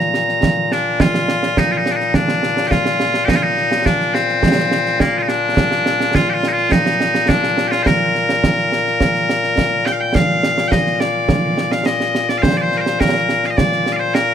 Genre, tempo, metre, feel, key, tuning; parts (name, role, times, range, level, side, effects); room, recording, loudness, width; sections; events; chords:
scottish traditional, Scottish pipe music; 105 BPM; 4/4; straight; Bb major; A4 = 440 Hz
loud bright bagpipes; melody; 0.0-14.3 s; Bb2 to Bb5; -16 LUFS; left 2 dB
concert snare drum and concert bass drum; drums; 0.0-14.3 s; -18 LUFS; right 2 dB
light reverb; -14 LUFS; side -9 dB against mid
0.0-1.0 A section; 1.0-10.1 A section; 10.1-14.3 B section